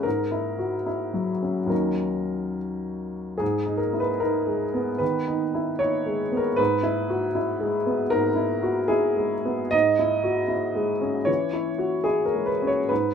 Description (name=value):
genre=neoclassical minimalist piano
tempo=69-79 BPM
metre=4/4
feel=rubato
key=G# minor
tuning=A4 = 441 Hz
part: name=warm upright piano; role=solo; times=0.0-13.1 s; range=D#2 to D#5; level=-22 LUFS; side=equal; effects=none
room=moderate studio reverb, RT60 0.7 s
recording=band playing live in one room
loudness=-22 LUFS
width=side -7 dB against mid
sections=0.0-3.4 A section; 3.4-13.1 A section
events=none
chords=0.0 C#m/G#; 1.7 D#m7; 3.4 G#m; 6.6 E/G#; 9.7 C#m/G#